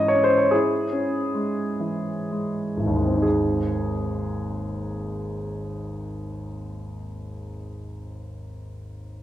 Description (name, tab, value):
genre	classical, romantic nocturne for solo piano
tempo	19-26 BPM (dotted quarters)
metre	6/8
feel	rubato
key	Ab major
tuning	A4 = 440 Hz
part	warm grand piano	solo	0.0-9.2 s	Ab1 to Eb5	-23 LUFS	equal	none
room	moderate recital hall reverb, RT60 1.8 s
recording	none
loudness	-22 LUFS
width	side -12 dB against mid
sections	0.0-3.2 A section; 3.2-8.2 B section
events	slowing down 0.0-3.2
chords	0.0 Dbm/Ab; 3.2 Ab